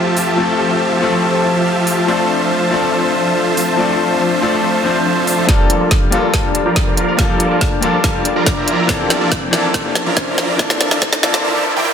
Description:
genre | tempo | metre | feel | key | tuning
future bass | 141 BPM | 4/4 | half-time | unclear | A4 = 441 Hz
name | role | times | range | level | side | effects
bright grand piano | accompaniment | 0.0-11.9 s | E3 to E5 | -19 LUFS | left 4 dB | sidechain pumping, digital delay
shimmering ambient pad | sustained chords | 0.0-11.4 s | F2 to C5 | -25 LUFS | equal | chorus, built-in reverb, phaser, sidechain pumping
concert harp | arpeggios | 0.0-11.9 s | D4 to A5 | -22 LUFS | left 4 dB | sidechain pumping, low-pass filter, digital delay
supersaw chords | riff | 0.0-11.9 s | F3 to Bb5 | -17 LUFS | right 2 dB | sidechain pumping, low-pass filter, digital delay
trap drum kit | drums | 0.2-11.4 s | hi-hat, snare drum | -18 LUFS | equal | small room ambience
electronic kick drum | drums | 5.5-11.1 s | none | -18 LUFS | equal | small room ambience
riser | sound effects | 7.7-11.9 s | none | -26 LUFS | right 2 dB | none
room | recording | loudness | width
moderate digital room reverb, RT60 1.1 s | dense, heavily limited modern master, high-pass filter | -13 LUFS | side -7 dB against mid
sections
0.0-5.5 A section; 5.5-11.9 B section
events
build-up 5.5-11.9; drum fill 5.5-11.4; filter sweep on supersaw synth 5.5-11.9; filter sweep 5.5-11.9; riser 7.7-11.9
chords
0.0 Fmaj7; 2.1 Dm7/F; 5.5 Gm9/F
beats
| 0.38 0.81 1.23 1.66 | 2.08 2.51 2.93 3.36 | 3.79 4.21 4.64 5.06 | 5.49 5.91 6.34 6.76 | 7.19 7.62 8.04 8.47 | 8.89 9.32 9.74 10.17 | 10.59 11.02 11.45 11.87

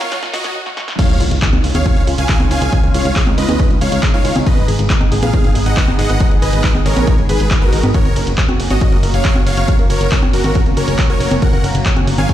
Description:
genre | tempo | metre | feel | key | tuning
uplifting trance | 138 BPM | 4/4 | straight | F# major | A4 = 440 Hz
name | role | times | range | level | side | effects
supersaw chords | melody | 0.0-12.3 s | F#4 to G#5 | -21 LUFS | equal | sidechain pumping, tape echo
lush unison pad | sustained chords | 0.0-12.3 s | A#3 to G#4 | -24 LUFS | equal | chorus, phaser, sidechain pumping
plucky analog bass | bass | 0.0-12.3 s | F#1 to G#2 | -17 LUFS | equal | sidechain pumping
punchy analog drum machine | drums | 0.0-12.3 s | congas, crash cymbal, handclaps, hi-hat, ride cymbal, snare drum | -22 LUFS | right 1 dB | none
riser and impact | sound effects | 0.0-2.7 s | none | -24 LUFS | equal | none
wide unison pluck | arpeggios | 0.1-12.3 s | D#4 to C#6 | -27 LUFS | left 2 dB | sidechain pumping, ping-pong delay
electronic kick drum | drums | 1.0-12.3 s | none | -15 LUFS | equal | none
room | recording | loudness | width
digital ambience | played on a big sound system in a bare room, large studio reverb, high-pass filter | -12 LUFS | side -12 dB against mid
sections
1.0-12.3 A section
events
drum fill 0.0-0.6, 0.7-1.0; riser 0.0-0.6; break 0.6-1.0; drop 1.0-12.3; impact 1.0-2.7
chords
0.0 F#; 1.0 C#add9; 4.5 G#m; 7.9 F#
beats
0.12 0.55 | 0.99 1.42 1.86 2.29 | 2.73 3.16 3.60 4.03 | 4.47 4.90 5.33 5.77 | 6.21 6.64 7.07 7.51 | 7.94 8.38 8.81 9.25 | 9.68 10.12 10.55 10.99 | 11.42 11.86 12.29

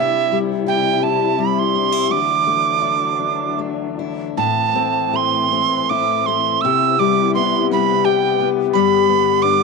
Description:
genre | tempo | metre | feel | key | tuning
celtic folk, Celtic slow air | 74-87 BPM | 3/4 | rubato | unclear | A4 = 442 Hz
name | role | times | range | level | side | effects
bright reedy wooden whistle | melody | 0.0-9.6 s | E5 to E6 | -17 LUFS | right 12 dB | none
fingerpicked steel-string acoustic guitar | accompaniment | 0.0-9.6 s | D2 to G4 | -19 LUFS | left 14 dB | none
muted studio string section | sustained chords | 0.0-9.6 s | G2 to E4 | -26 LUFS | right 1 dB | none
room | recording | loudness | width
moderate spring reverb, RT60 1.1 s, studio reverb | 1960s-style stereo with parts hard left and right | -15 LUFS | side -3 dB against mid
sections
0.0-4.4 A section; 4.4-9.6 B section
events
none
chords
0.0 C; 2.1 Dadd9; 4.4 Am; 6.6 Cmaj7; 8.7 G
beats
0.64 1.35 | 2.08 2.81 3.58 | 4.37 5.14 5.90 | 6.63 7.34 8.04 | 8.74 9.44

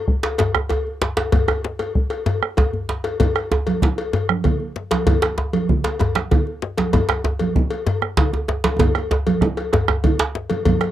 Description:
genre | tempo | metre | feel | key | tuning
west african traditional, West African drum ensemble | 129 BPM (dotted quarters) | 12/8 | straight | none | none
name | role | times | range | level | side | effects
bombo | percussion | 0.1-10.9 s | none | -20 LUFS | equal | none
cowbell | percussion | 0.2-10.9 s | none | -25 LUFS | left 4 dB | none
djembe | percussion | 0.2-10.3 s | none | -22 LUFS | right 2 dB | none
djembe | percussion | 0.4-10.9 s | none | -25 LUFS | left 3 dB | none
congas | percussion | 3.2-10.8 s | none | -22 LUFS | right 5 dB | none
room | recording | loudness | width
light reverb | dry, close 1970s-style studio recording | -18 LUFS | side -12 dB against mid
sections
0.0-10.7 A section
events
drum fill 2.4-3.2, 8.8-10.7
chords
none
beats
0.39 0.86 | 1.33 1.80 2.27 2.73 | 3.20 3.67 4.14 4.60 | 5.07 5.54 6.00 6.47 | 6.93 7.40 7.87 8.33 | 8.80 9.26 9.73 10.19 | 10.66

